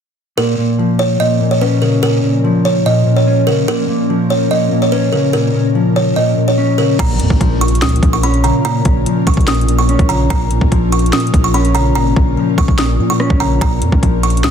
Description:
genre	hip hop, trap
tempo	145 BPM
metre	4/4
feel	half-time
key	Bb minor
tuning	A4 = 440 Hz
part	buzzing kalimba	melody	0.4-14.5 s	Bb4 to Eb6	-18 LUFS	right 2 dB	none
part	mellow electric guitar	accompaniment	0.4-14.5 s	Bb2 to Db4	-15 LUFS	left 1 dB	spring reverb
part	ethereal airy pad	sustained chords	0.7-14.5 s	Bb2 to Bb4	-20 LUFS	left 2 dB	ensemble chorus, built-in reverb
part	hard-hitting 808-style bass	bass	7.0-14.5 s	Ab1 to Bb2	-16 LUFS	equal	none
part	trap drum kit	drums	7.0-14.5 s	crash cymbal, hi-hat, kick drum, rim click, snare drum	-16 LUFS	equal	vintage 12-bit sampler grit
part	impact	sound effects	7.1-8.6 s	none	-25 LUFS	equal	none
room	light reverb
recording	dense, heavily limited modern master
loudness	-11 LUFS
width	side -8 dB against mid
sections	0.4-7.0 A section; 7.0-14.5 B section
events	impact 7.0-8.6; hi-hats muted 12.0-13.6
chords	0.4 Bbm

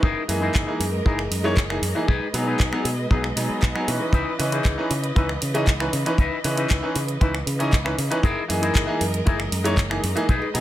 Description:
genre	nu-disco, nu disco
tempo	117 BPM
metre	4/4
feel	straight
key	unclear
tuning	A4 = 440 Hz
part	warm symphonic string section	sustained chords	0.0-10.6 s	E3 to D#5	-31 LUFS	right 1 dB	sidechain pumping
part	electric guitar with an envelope filter	riff	0.0-10.5 s	D#4 to B4	-29 LUFS	left 4 dB	lush chorus, ping-pong delay
part	picked electric bass with an envelope filter	bass	0.0-10.6 s	F#1 to C#3	-27 LUFS	equal	none
part	kick drum	drums	0.0-10.4 s	none	-19 LUFS	equal	studio ambience
part	bright concert grand piano	accompaniment	0.3-10.6 s	E3 to D#5	-26 LUFS	equal	ping-pong delay
part	pop drum kit	drums	0.3-10.6 s	finger snaps, handclaps, hi-hat	-28 LUFS	right 1 dB	studio ambience
part	cowbell	percussion	1.4-1.5, 5.5-5.6, 9.6-10.5 s	none	-30 LUFS	left 1 dB	none
room	studio reverb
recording	none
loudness	-20 LUFS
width	side -14 dB against mid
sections	0.0-10.6 A section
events	none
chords	0.0 F#13; 2.1 B6; 4.1 C#m9; 8.2 F#13

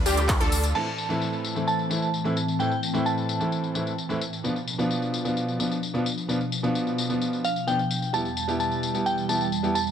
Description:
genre	EDM, festival progressive house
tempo	130 BPM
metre	4/4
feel	straight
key	A minor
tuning	A4 = 440 Hz
part	lush unison pad	sustained chords	0.0-9.9 s	E2 to D6	-30 LUFS	equal	chorus, phaser, sidechain pumping
part	wide unison pluck	arpeggios	0.0-0.7 s	G4 to A4	-33 LUFS	equal	sidechain pumping, digital delay
part	supersaw stab	riff	0.0-0.7 s	D4 to A4	-32 LUFS	left 1 dB	lush chorus, sidechain pumping, low-pass filter, digital delay
part	saturated sub bass	bass	0.0-0.7 s	D2	-26 LUFS	equal	sidechain pumping
part	big-room dance drum kit	drums	0.1-9.9 s	crash cymbal, handclaps, hi-hat, ride cymbal, tambourine	-32 LUFS	left 4 dB	overdrive, low-pass filter on hats, small room ambience, low-pass filter on perc, low-pass filter on cymbals, low-pass filter on snare
part	clear grand piano	accompaniment	0.7-9.7 s	A2 to G4	-28 LUFS	equal	sidechain pumping, digital delay
part	glassy synth bell	melody	0.8-4.2, 7.4-9.9 s	F5 to A5	-28 LUFS	right 1 dB	chorus, tremolo, digital delay
room	light reverb, digital ambience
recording	none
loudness	-23 LUFS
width	side -8 dB against mid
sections	0.8-9.9 A section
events	none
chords	0.0 Dm; 0.8 Am; 4.4 Bdim; 8.1 Em

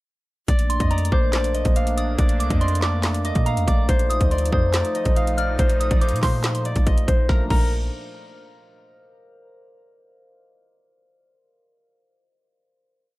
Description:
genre	hip hop, trap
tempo	141 BPM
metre	4/4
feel	half-time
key	Bb major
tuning	A4 = 440 Hz
part	concert harp	melody	0.5-7.7 s	Bb4 to F5	-26 LUFS	left 1 dB	none
part	sweeping resonant pad	sustained chords	0.5-7.5 s	Bb2 to Eb4	-30 LUFS	right 1 dB	chorus
part	clean 808-style bass	bass	0.5-7.9 s	Bb1 to Bb2	-22 LUFS	equal	none
part	trap drum kit	drums	0.5-7.6 s	crash cymbal, handclaps, hi-hat, kick drum, snare drum	-22 LUFS	equal	none
part	soft synth bell	second line	0.7-7.7 s	Bb5 to F6	-30 LUFS	right 1 dB	chorus, phaser, tape echo
room	light reverb, digital ambience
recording	none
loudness	-18 LUFS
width	side -19 dB against mid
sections	0.5-7.3 hook; 7.3-9.0 final chord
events	none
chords	0.5 Bbmaj7; 3.9 F7/Bb; 7.3 N.C.

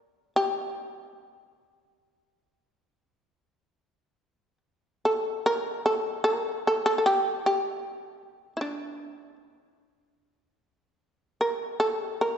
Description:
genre	japanese traditional, Japanese chamber music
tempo	75 BPM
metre	4/4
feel	rubato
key	G minor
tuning	A4 = 440 Hz
part	shamisen	solo	0.0-12.4 s	D4 to Bb4	-25 LUFS	equal	none
room	wet concert hall reverb, RT60 2.1 s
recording	recorded in a church or concert hall, nothing above 7.9 kHz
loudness	-25 LUFS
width	side -8 dB against mid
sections	0.0-5.4 A section; 5.4-12.4 B section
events	none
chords	none

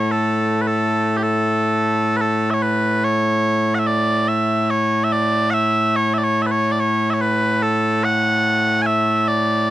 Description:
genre	scottish traditional, Scottish pipe music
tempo	72 BPM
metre	3/4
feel	straight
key	A major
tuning	A4 = 438 Hz
part	mellow small bagpipes	solo	0.0-9.7 s	A2 to G#5	-16 LUFS	equal	none
room	little or no reverb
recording	dry, close 1970s-style studio recording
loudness	-16 LUFS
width	side -14 dB against mid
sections	0.0-2.6 A section; 2.6-9.7 B section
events	none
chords	none

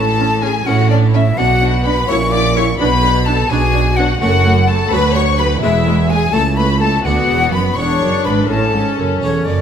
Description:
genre	classical, baroque-style concerto movement with solo episodes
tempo	84 BPM (dotted quarters)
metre	6/8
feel	straight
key	A major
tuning	A4 = 440 Hz
part	bright silver concert flute	melody	0.0-9.6 s	C#5 to D6	-20 LUFS	left 3 dB	none
part	rich studio violin section	melody	0.0-9.2 s	D5 to D6	-22 LUFS	left 4 dB	none
part	warm symphonic violin section	second line	0.0-9.6 s	D4 to D5	-21 LUFS	left 4 dB	none
part	harpsichord	accompaniment	0.0-9.6 s	C#2 to B4	-23 LUFS	equal	none
part	rich chamber viola section	accompaniment	0.0-9.6 s	F#3 to E4	-21 LUFS	equal	none
part	dark chamber double bass section	bass	0.0-9.6 s	E1 to D2	-18 LUFS	right 4 dB	none
part	warm chamber cello section	bass	0.0-9.6 s	C#2 to B2	-18 LUFS	right 2 dB	none
room	light reverb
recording	none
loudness	-12 LUFS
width	side -8 dB against mid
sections	0.0-9.6 A section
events	none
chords	0.0 A; 1.4 Bm; 2.1 F#7/A#; 2.8 Bm; 4.2 F#m; 4.9 Bm/D; 5.6 E; 6.3 A/C#; 7.0 Bm; 7.8 E7; 8.5 A

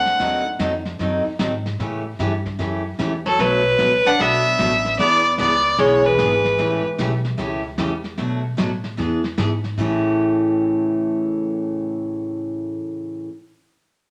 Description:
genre	country, western swing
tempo	150 BPM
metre	4/4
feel	swing 65% on 8ths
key	A mixolydian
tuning	A4 = 439 Hz
part	clear fiddle	melody	0.0-0.5, 3.3-6.8 s	A4 to F#5	-20 LUFS	equal	none
part	koto	second line	0.0-9.4 s	E3 to D4	-26 LUFS	equal	none
part	upright bass	bass	0.0-12.7 s	G#1 to B2	-30 LUFS	equal	none
part	vintage brush drum kit	drums	0.1-10.1 s	brushed snare drum, crash cymbal, hi-hat, kick drum, snare drum	-32 LUFS	equal	none
part	picked steel-string acoustic guitar	accompaniment	0.2-13.3 s	A2 to A4	-25 LUFS	equal	none
room	wet studio reverb, RT60 0.8 s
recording	none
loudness	-20 LUFS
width	mono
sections	0.0-9.8 A section; 9.8-13.0 B section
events	none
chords	0.2 D#dim7; 1.8 A7; 3.4 Bm7; 5.0 E7; 6.6 A7; 8.2 Bm7; 9.0 E7; 9.8 A7

